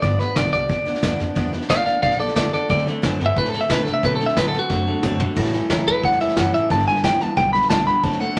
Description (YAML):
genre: rockabilly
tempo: 180 BPM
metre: 4/4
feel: straight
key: unclear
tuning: A4 = 441 Hz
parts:
  - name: clean electric guitar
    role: melody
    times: 0.0-8.4 s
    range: F#4 to B5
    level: -23 LUFS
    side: equal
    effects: none
  - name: picked steel-string acoustic guitar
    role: accompaniment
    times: 0.0-8.4 s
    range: G2 to A4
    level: -29 LUFS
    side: equal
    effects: none
  - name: upright bass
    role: bass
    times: 0.0-8.4 s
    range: G1 to C3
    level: -30 LUFS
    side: equal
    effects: none
  - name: vintage brush drum kit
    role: drums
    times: 0.0-8.4 s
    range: crash cymbal, hi-hat, kick drum, snare drum, toms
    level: -27 LUFS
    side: equal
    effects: none
  - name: electric guitar through a small old amp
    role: riff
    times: 2.7-8.4 s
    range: G2 to B3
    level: -28 LUFS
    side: equal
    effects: none
room: wet studio reverb, RT60 0.5 s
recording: none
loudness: -20 LUFS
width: mono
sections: 0.0-8.4 A section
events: clean electric guitar solo 0.0-8.4; drum fill 4.7-5.4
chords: 0.0 G7; 2.7 D7; 5.4 A7; 6.7 G7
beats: | 0.03 0.36 0.70 1.03 | 1.36 1.70 2.03 2.37 | 2.70 3.04 3.37 3.70 | 4.04 4.37 4.70 5.04 | 5.37 5.70 6.04 6.37 | 6.71 7.04 7.37 7.71 | 8.04 8.37